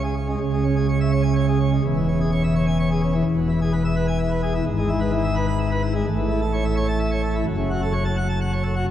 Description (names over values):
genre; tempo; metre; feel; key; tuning
classical, organ toccata; 128 BPM; 3/4; straight; C# minor; A4 = 435 Hz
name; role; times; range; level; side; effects
pipe organ, plenum; solo; 0.0-8.9 s; E1 to B5; -19 LUFS; equal; none
room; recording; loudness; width
wet church reverb, RT60 3.1 s; dark, warm production; -19 LUFS; side -10 dB against mid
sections
0.4-8.9 A section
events
none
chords
0.4 C#m; 1.8 C#m/E; 3.2 E; 4.7 E/G#; 6.1 A; 7.5 F#m